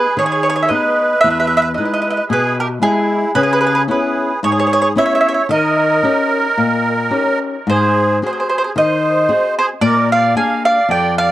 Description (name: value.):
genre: italian folk, Italian serenade.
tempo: 112 BPM.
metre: 4/4.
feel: swing 55% on 8ths, rubato.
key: G# harmonic minor.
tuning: A4 = 439 Hz.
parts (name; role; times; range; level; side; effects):
mandolin; melody; 0.0-11.3 s; G#4 to G#5; -15 LUFS; right 1 dB; analog delay.
musette accordion; second line; 0.0-11.3 s; E4 to E#5; -19 LUFS; right 3 dB; analog delay.
flamenco guitar; accompaniment; 0.0-11.3 s; E2 to D#5; -19 LUFS; left 3 dB; none.
room: moderate small room reverb, RT60 0.5 s.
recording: dry, gritty hardware recording.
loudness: -13 LUFS.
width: side -14 dB against mid.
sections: 0.0-11.3 A section.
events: none.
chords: 0.0 G#m; 1.2 Emaj7; 3.4 C#m7; 5.5 D#7; 7.7 G#7; 9.8 A#7.